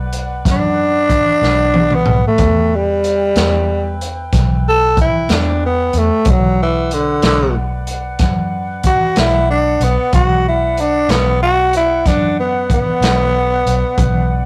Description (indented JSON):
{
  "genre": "slow blues",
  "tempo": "62 BPM (dotted quarters)",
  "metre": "12/8",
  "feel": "straight",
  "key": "B minor",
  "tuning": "A4 = 443 Hz",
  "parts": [
    { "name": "mellow horn section", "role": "sustained chords", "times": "0.0-14.5 s", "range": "B4 to G5", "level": "-28 LUFS", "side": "equal", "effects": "none" },
    { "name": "vintage muted fingered electric bass", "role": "bass", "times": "0.0-14.5 s", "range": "B1 to F#2", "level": "-21 LUFS", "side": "equal", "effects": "none" },
    { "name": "crunchy breakbeat drum kit", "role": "drums", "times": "0.1-14.1 s", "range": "hi-hat, kick drum, snare drum, toms", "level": "-20 LUFS", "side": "equal", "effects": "none" },
    { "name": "growling tenor saxophone", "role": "melody", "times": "0.5-14.5 s", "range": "D3 to A4", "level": "-17 LUFS", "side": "equal", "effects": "none" }
  ],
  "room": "moderate small room reverb, RT60 0.5 s",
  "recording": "rough rehearsal-room recording, tube saturation",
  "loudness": "-15 LUFS",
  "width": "mono",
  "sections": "0.0-14.5 A section",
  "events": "tenor saxophone solo 0.0-14.5; drum fill 1.4-2.4",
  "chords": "0.0 Bm; 2.4 Em; 6.3 Bm",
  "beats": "0.46 1.43 | 2.40 3.36 4.33 5.30 | 6.26 7.23 8.20 9.16 | 10.13 11.10 12.06 13.03 | 13.99"
}